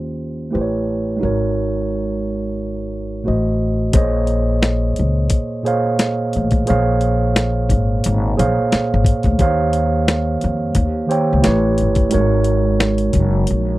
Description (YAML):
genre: R&B, neo-soul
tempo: 88 BPM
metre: 4/4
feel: swing 59% on 16ths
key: Bb minor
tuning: A4 = 441 Hz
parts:
  - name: mellow tine electric piano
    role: accompaniment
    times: 0.0-13.8 s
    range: A2 to G5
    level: -18 LUFS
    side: right 2 dB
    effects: none
  - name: upright bass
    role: bass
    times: 0.0-13.8 s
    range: Gb1 to F2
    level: -19 LUFS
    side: left 1 dB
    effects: none
  - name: dusty soul sampler-style drum kit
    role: drums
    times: 3.9-13.7 s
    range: hi-hat, kick drum, snare drum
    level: -18 LUFS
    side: left 1 dB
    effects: none
room: little or no reverb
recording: dry, close 1970s-style studio recording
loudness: -15 LUFS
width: side -17 dB against mid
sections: 0.0-3.9 A section; 3.9-13.8 B section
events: none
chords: 0.0 Eb13; 0.5 A9; 1.2 Ab9sus4; 3.3 Adim7; 3.9 Bbm11; 9.4 Eb13; 11.4 A9; 12.1 Ab9sus4